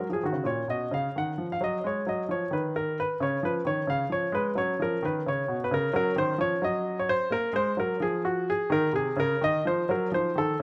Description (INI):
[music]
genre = classical, baroque-style suite movement for grand piano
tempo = 87 BPM (dotted quarters)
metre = 12/8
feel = rubato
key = unclear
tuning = A4 = 439 Hz
[part]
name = clear grand piano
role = solo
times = 0.0-10.6 s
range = Bb2 to Gb5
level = -28 LUFS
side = equal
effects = none
[sound]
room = light reverb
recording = close, detailed microphones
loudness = -28 LUFS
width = mono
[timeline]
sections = 0.0-10.6 A section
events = none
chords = 0.4 Gb/Bb; 3.2 Db; 4.6 Gb5; 5.9 Gb; 8.7 Eb5; 10.1 F5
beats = | 0.44 1.14 1.83 2.50 | 3.19 3.87 4.56 5.25 | 5.92 6.61 7.30 8.00 | 8.70 9.41 10.12